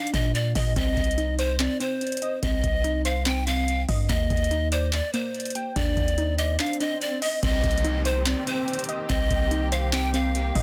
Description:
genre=hip hop, trap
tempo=144 BPM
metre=4/4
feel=half-time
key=C minor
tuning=A4 = 440 Hz
part: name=breathy bright pan flute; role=second line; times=0.0-10.6 s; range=C5 to G5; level=-31 LUFS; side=equal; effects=digital delay
part: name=warbly dusty pluck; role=arpeggios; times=0.0-10.6 s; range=Bb3 to G5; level=-32 LUFS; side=equal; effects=chorus, digital delay
part: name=booming analog drum machine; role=drums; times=0.0-10.6 s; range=handclaps, hi-hat, kick drum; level=-30 LUFS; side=equal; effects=overdrive
part: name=long sustained 808-style bass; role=bass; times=0.1-10.6 s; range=C2 to Bb2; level=-29 LUFS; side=equal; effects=none
part: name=swell and downlifter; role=sound effects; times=6.1-10.6 s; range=none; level=-41 LUFS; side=equal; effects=none
part: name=muted studio string section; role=sustained chords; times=7.4-10.6 s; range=Eb3 to G4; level=-37 LUFS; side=equal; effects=none
room=little or no reverb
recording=dense, heavily limited modern master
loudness=-25 LUFS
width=mono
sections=0.0-7.4 A section; 7.4-10.6 B section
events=swell 6.1-7.4; kick muted 6.6-7.4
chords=0.0 Ebmaj7; 0.8 Cm; 4.1 Ebmaj7; 7.4 Cm7

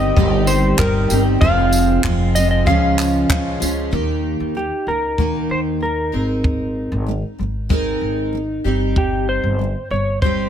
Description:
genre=acoustic pop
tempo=95 BPM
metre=4/4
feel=straight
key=Eb mixolydian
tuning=A4 = 438 Hz
part: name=clean lap steel guitar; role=melody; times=0.0-10.5 s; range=G4 to F5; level=-21 LUFS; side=equal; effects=none
part: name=bright upright piano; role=accompaniment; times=0.0-3.9 s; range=Eb4 to Db5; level=-33 LUFS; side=left 5 dB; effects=none
part: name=picked steel-string acoustic guitar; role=accompaniment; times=0.0-10.5 s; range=F2 to Bb4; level=-20 LUFS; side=right 1 dB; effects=double-tracked left and right
part: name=pedal harmonium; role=sustained chords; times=0.0-3.9 s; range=Eb3 to Db4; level=-28 LUFS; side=left 1 dB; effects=none
part: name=upright bass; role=bass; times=0.0-10.5 s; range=F1 to Eb2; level=-21 LUFS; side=equal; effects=none
part: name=compact cocktail drum kit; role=drums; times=0.2-10.4 s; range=handclaps, kick drum, tambourine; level=-20 LUFS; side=equal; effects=none
room=studio reverb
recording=none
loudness=-16 LUFS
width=side -9 dB against mid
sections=0.0-3.9 A section; 3.9-10.5 B section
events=none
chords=0.0 Cm/G; 1.4 Fm; 2.7 Db; 3.9 Eb; 6.1 Abadd9; 8.7 Cm/G

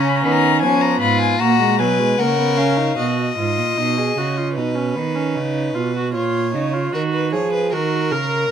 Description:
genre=classical, baroque-style fugue for string quartet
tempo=76 BPM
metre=4/4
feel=straight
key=unclear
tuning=A4 = 440 Hz
part: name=rich violin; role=melody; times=0.0-3.0 s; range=E#5 to B5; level=-20 LUFS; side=left 10 dB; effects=none
part: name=rich violin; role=second line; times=0.0-8.5 s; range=B3 to D#5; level=-22 LUFS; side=left 4 dB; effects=none
part: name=warm viola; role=accompaniment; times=0.0-8.5 s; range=F#3 to A#4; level=-22 LUFS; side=right 2 dB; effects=none
part: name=rich cello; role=bass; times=0.0-8.5 s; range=G#2 to E#3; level=-22 LUFS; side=right 6 dB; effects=none
room=moderate large studio reverb, RT60 1.0 s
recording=minimal, uncompressed stereo recording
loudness=-16 LUFS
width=side -8 dB against mid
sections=0.0-3.0 A section; 3.0-8.5 B section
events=none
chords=0.0 C#7; 1.4 F#/A#; 3.0 B; 4.6 Badd9; 6.1 A#m; 7.7 D#m7

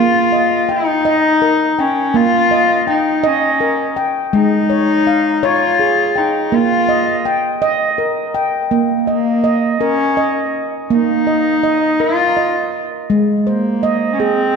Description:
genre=world meditative, meditative tuned percussion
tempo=55 BPM (dotted quarters)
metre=6/8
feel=straight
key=unclear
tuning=A4 = 441 Hz
part: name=warm cello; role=melody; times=0.0-14.6 s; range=Bb3 to F4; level=-16 LUFS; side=left 3 dB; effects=none
part: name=handpan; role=arpeggios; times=0.0-14.6 s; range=Ab3 to G5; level=-15 LUFS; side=right 2 dB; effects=diffuse ambient delay
room=wet echo chamber reverb, RT60 2.5 s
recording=dark, warm production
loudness=-13 LUFS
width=side -5 dB against mid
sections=0.0-8.7 A section; 8.7-14.6 B section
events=none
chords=0.0 Bbm; 4.3 Ab5; 6.5 Bb5; 8.7 N.C.; 13.1 Ab

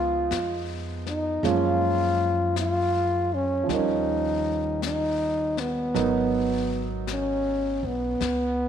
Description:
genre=jazz ballad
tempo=53 BPM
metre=4/4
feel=swing 66% on 8ths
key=unclear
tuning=A4 = 438 Hz
part: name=growling trombone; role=melody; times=0.0-8.7 s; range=B3 to E#4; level=-25 LUFS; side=left 1 dB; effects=slapback echo
part: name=warm grand piano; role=accompaniment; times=0.0-8.2 s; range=E#3 to A#4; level=-29 LUFS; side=right 10 dB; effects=none
part: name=upright bass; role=bass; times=0.0-8.7 s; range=G#1 to F#2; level=-31 LUFS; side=left 1 dB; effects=none
part: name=jazz brush drum kit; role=drums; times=0.3-8.7 s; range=brushed snare drum, hi-hat, snare drum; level=-37 LUFS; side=left 10 dB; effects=none
room=light reverb, small room ambience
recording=1960s-style stereo with parts hard left and right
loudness=-23 LUFS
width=side -8 dB against mid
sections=0.0-8.7 A section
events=drum fill 8.2-8.7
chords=0.0 C#9; 1.4 F#maj9; 3.7 D#7; 6.0 G#m7

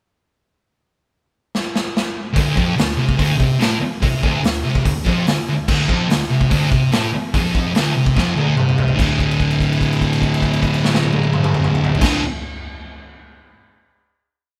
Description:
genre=garage rock duo or trio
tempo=145 BPM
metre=4/4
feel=straight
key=D minor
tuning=A4 = 440 Hz
part: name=raw garage drum kit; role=drums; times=1.5-12.1 s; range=crash cymbal, hi-hat, kick drum, snare drum, toms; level=-22 LUFS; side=equal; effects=none
part: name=thick fuzz guitar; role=riff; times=2.3-12.2 s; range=D2 to D3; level=-19 LUFS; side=equal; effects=distortion
room=light reverb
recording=band playing live in one room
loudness=-18 LUFS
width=mono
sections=0.7-2.4 pickup bar; 2.4-9.0 riff; 9.0-12.3 final chord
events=drum fill 1.5-2.4, 8.2-9.0; held note 9.0-12.0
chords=0.7 N.C.; 2.4 Dm; 9.0 D5

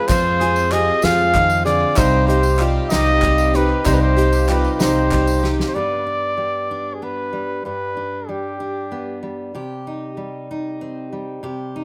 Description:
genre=indie folk with a building arrangement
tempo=63 BPM (dotted quarters)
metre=6/8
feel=straight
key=C harmonic minor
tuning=A4 = 439 Hz
part: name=warm trumpet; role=melody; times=0.0-9.2 s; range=G4 to F5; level=-22 LUFS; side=equal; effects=none
part: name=fingerpicked steel-string acoustic guitar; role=accompaniment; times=0.0-11.8 s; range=G2 to B4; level=-27 LUFS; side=equal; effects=none
part: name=picked twelve-string acoustic guitar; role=accompaniment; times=0.0-5.8 s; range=C3 to Ab4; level=-29 LUFS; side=equal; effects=none
part: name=warm chamber string section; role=sustained chords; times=0.0-5.7 s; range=Ab3 to F5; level=-33 LUFS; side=equal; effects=none
part: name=clear upright piano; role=arpeggios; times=0.0-5.7 s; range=Eb4 to Ab4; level=-26 LUFS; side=equal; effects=none
part: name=upright bass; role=bass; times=0.1-5.6 s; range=C2 to F2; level=-22 LUFS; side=equal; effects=none
part: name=soft-mallet drum kit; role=drums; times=0.1-5.7 s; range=hi-hat, kick drum, snare drum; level=-25 LUFS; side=equal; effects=none
part: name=group handclap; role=percussion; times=0.1-5.7 s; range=none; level=-34 LUFS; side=equal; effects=none
part: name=tambourine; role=percussion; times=0.1-5.4 s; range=none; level=-37 LUFS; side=equal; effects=none
room=studio reverb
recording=rough home demo mix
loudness=-18 LUFS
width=mono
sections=0.0-5.8 A section; 5.8-11.8 B section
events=drum fill 5.4-5.8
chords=0.0 Fm; 2.0 Cm; 5.8 G; 9.5 Cm

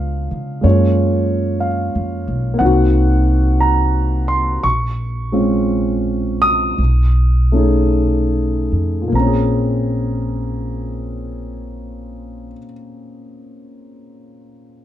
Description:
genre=jazz ballad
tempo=49-61 BPM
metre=4/4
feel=swing 67% on 8ths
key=Bb minor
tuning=A4 = 440 Hz
part: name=dark grand piano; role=accompaniment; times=0.0-14.8 s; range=Bb2 to Eb6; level=-18 LUFS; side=equal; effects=none
part: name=upright bass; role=bass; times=0.0-12.5 s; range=Bb1 to Db3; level=-18 LUFS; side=equal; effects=none
room=moderate club reverb, RT60 0.8 s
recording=dark, warm production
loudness=-14 LUFS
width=side -12 dB against mid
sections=0.6-9.1 A section; 9.1-14.0 B section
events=slowing down 0.6-9.1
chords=0.0 Db7b9; 0.6 Gbmaj9; 2.6 Cm7b5; 4.6 Bbm9; 6.8 B13; 9.1 Bbm9

